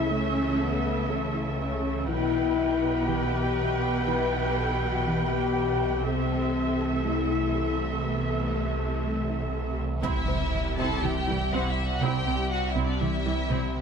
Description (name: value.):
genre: cinematic, hybrid orchestral and electronic film score.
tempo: 121 BPM.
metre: 4/4.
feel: straight.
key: unclear.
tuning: A4 = 435 Hz.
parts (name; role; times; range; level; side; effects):
warm symphonic viola section; accompaniment; 0.0-13.7 s; E3 to G5; -32 LUFS; right 2 dB; none.
hollow soft pad; sustained chords; 0.0-13.8 s; E3 to E5; -34 LUFS; left 1 dB; chorus.
mellow French horn section; sustained chords; 0.0-13.8 s; G3 to B4; -30 LUFS; left 6 dB; none.
phased detuned saw bass; bass; 0.0-13.8 s; B1 to C#2; -32 LUFS; right 1 dB; phaser.
rich studio cello section; bass; 0.0-13.6 s; B2 to C#3; -33 LUFS; right 4 dB; none.
tight sequenced synth; arpeggios; 0.1-13.7 s; C3 to A4; -36 LUFS; equal; chorus, phaser, ping-pong delay.
rich studio violin section; melody; 10.0-13.7 s; D5 to A5; -33 LUFS; left 1 dB; none.
rich symphonic violin section; second line; 10.0-13.8 s; D4 to A4; -34 LUFS; left 1 dB; none.
warm symphonic double bass section; bass; 10.0-13.6 s; C2; -34 LUFS; right 6 dB; none.
impact; sound effects; 10.0-12.0 s; none; -35 LUFS; right 1 dB; none.
room: moderate scoring stage reverb, RT60 1.5 s.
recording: none.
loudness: -24 LUFS.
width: side -6 dB against mid.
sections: 0.0-10.0 A section; 10.0-13.8 B section.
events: impact 10.0-12.0.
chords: 0.0 A/C#; 2.1 Em/B; 6.1 Am/C; 10.0 C.